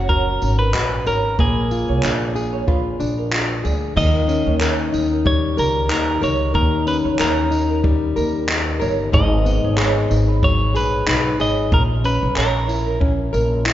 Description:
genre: acoustic pop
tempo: 93 BPM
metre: 4/4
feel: swing 55% on 16ths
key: unclear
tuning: A4 = 440 Hz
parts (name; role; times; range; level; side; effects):
- clean electric guitar; melody; 0.0-13.0 s; G#4 to D#5; -23 LUFS; equal; none
- nylon-string guitar; accompaniment; 0.0-13.7 s; G#2 to A#4; -22 LUFS; left 3 dB; none
- nylon-string guitar; arpeggios; 0.0-13.6 s; A#4 to D#5; -28 LUFS; right 7 dB; none
- upright bass; bass; 0.0-13.7 s; F#1 to E2; -21 LUFS; right 1 dB; none
- jazz brush drum kit; drums; 0.1-13.7 s; crash cymbal, handclaps, kick drum, tambourine; -22 LUFS; equal; none
room: moderate church reverb, RT60 2.9 s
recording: recorded in a church or concert hall, nothing above 7.6 kHz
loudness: -16 LUFS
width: side -12 dB against mid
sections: 0.0-4.0 A section; 4.0-13.7 B section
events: none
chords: 0.0 F#; 1.4 A#7; 4.0 D#7; 9.1 G#m7; 11.7 A#dim

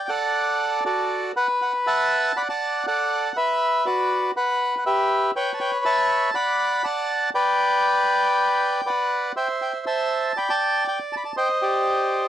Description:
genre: tango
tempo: 120 BPM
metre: 4/4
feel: rubato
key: G major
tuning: A4 = 440 Hz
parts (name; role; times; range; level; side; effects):
- bandoneon; solo; 0.0-12.3 s; F#4 to B5; -20 LUFS; equal; none
room: little or no reverb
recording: dry, close 1970s-style studio recording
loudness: -20 LUFS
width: side -11 dB against mid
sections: 0.0-12.3 A section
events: none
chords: 0.3 D; 1.3 Esus2; 2.3 D; 3.3 Bm; 4.3 Emadd9; 5.3 Aadd9; 6.3 D; 7.3 G; 9.3 C; 10.4 G5; 11.4 Cm

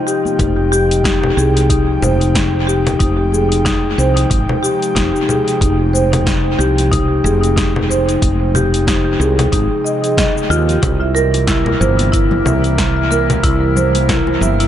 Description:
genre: organic downtempo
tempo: 92 BPM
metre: 4/4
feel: swing 57% on 16ths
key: F minor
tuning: A4 = 441 Hz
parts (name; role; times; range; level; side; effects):
- airy breathy pad; sustained chords; 0.0-14.7 s; C3 to G5; -23 LUFS; right 1 dB; chorus, sidechain pumping
- marimba with medium mallets; arpeggios; 0.0-14.7 s; Eb4 to E5; -16 LUFS; left 1 dB; dub echo
- drifting glass-harmonics texture; texture; 0.0-0.4, 11.2-14.7 s; Bb3 to Eb5; -25 LUFS; left 3 dB; chorus, built-in reverb
- deep house drum kit; drums; 0.1-14.7 s; cabasa, congas, hi-hat, snare drum; -21 LUFS; left 2 dB; overdrive, dub echo
- congas and bongos; percussion; 0.3-0.4, 11.3-14.7 s; none; -26 LUFS; left 3 dB; none
- woody fretless electric bass; bass; 0.4-14.7 s; F1 to Eb2; -16 LUFS; equal; none
- electronic kick drum; drums; 0.4-14.2 s; none; -19 LUFS; equal; overdrive
room: wet spring reverb, RT60 2.5 s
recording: echo-heavy mix, nothing above 11.0 kHz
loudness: -12 LUFS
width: side -10 dB against mid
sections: 0.4-14.7 A section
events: none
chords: 0.4 Fm9; 10.8 C7

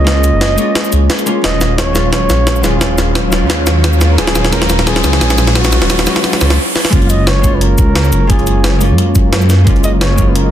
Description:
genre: liquid drum and bass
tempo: 175 BPM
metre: 4/4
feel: swing 53% on 16ths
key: F# major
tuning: A4 = 440 Hz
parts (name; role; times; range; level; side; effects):
- breathy flugelhorn; melody; 0.0-10.5 s; F#4 to E#5; -20 LUFS; right 1 dB; low-pass filter, tape echo
- vintage hollow-body jazz guitar; accompaniment; 0.0-10.5 s; F#3 to E#4; -17 LUFS; left 1 dB; tape echo
- warm analog pad; sustained chords; 0.0-10.5 s; F#3 to E#5; -25 LUFS; equal; chorus
- dark detuned saw bass; bass; 0.0-10.5 s; D#1 to F#2; -13 LUFS; equal; none
- electronic kick drum; drums; 0.1-10.3 s; none; -14 LUFS; equal; high-pass filter on kick, high-pass filter on room
- jungle sampler-style drum kit; drums; 0.1-10.4 s; hi-hat, shaker, snare drum; -16 LUFS; equal; none
- riser; sound effects; 2.6-6.9 s; none; -23 LUFS; equal; none
room: light reverb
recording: dense, heavily limited modern master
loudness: -9 LUFS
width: side -11 dB against mid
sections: 0.0-6.9 A section; 6.9-10.5 B section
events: build-up 0.0-6.9; drum fill 0.0-6.6, 6.8; riser 2.6-6.9; drop 6.9-10.5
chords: 0.0 F#maj9; 1.4 D#m11; 6.9 F#maj9

